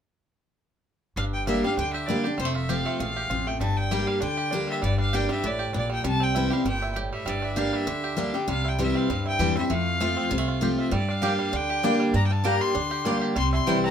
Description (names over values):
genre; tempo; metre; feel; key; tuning
bluegrass; 197 BPM; 4/4; swing 54% on 8ths; G dorian; A4 = 440 Hz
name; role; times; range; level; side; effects
bluegrass banjo; melody; 1.2-13.9 s; G3 to G4; -33 LUFS; right 6 dB; none
clear fiddle; melody; 1.2-13.9 s; C5 to C6; -30 LUFS; left 2 dB; none
picked steel-string acoustic guitar; accompaniment; 1.2-13.9 s; E2 to G4; -26 LUFS; left 1 dB; none
upright bass; bass; 1.2-13.9 s; F1 to G2; -29 LUFS; right 1 dB; none
mandolin; stabs; 11.2-13.8 s; Bb3 to G5; -29 LUFS; right 2 dB; none
room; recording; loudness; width
moderate small room reverb, RT60 0.5 s; minimal, uncompressed stereo recording; -23 LUFS; side -8 dB against mid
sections
1.2-13.9 A section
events
none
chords
1.2 Gm; 2.4 F; 3.6 Gm; 6.0 C; 7.3 Gm; 8.5 C; 9.7 F; 10.9 Gm; 13.4 C